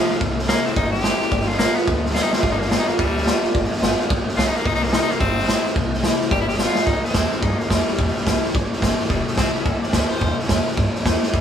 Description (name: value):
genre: rockabilly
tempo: 216 BPM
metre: 4/4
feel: swing 62% on 8ths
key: C mixolydian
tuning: A4 = 440 Hz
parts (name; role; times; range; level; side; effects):
- raspy tenor saxophone; melody; 0.0-11.4 s; F3 to D5; -25 LUFS; left 2 dB; none
- picked acoustic archtop guitar; accompaniment; 0.0-11.4 s; F2 to F4; -25 LUFS; left 2 dB; none
- upright bass; bass; 0.1-11.4 s; E1 to G2; -27 LUFS; equal; none
- raw garage drum kit; drums; 0.1-11.4 s; hi-hat, kick drum, snare drum; -20 LUFS; right 1 dB; none
room: light reverb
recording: band playing live in one room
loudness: -17 LUFS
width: side -8 dB against mid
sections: 0.0-6.9 A section; 6.9-11.4 B section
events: tenor saxophone solo 0.0-6.9; drum fill 2.1, 6.6, 11.2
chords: 0.2 C7; 1.3 G7; 4.6 C7; 6.3 G7; 6.9 C7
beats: | 0.21 0.48 0.76 1.04 | 1.32 1.59 1.87 2.15 | 2.42 2.70 2.98 3.26 | 3.54 3.81 4.09 4.37 | 4.64 4.92 5.20 5.48 | 5.76 6.03 6.31 6.59 | 6.87 7.15 7.42 7.70 | 7.98 8.26 8.54 8.82 | 9.10 9.38 9.65 9.93 | 10.21 10.49 10.77 11.05 | 11.33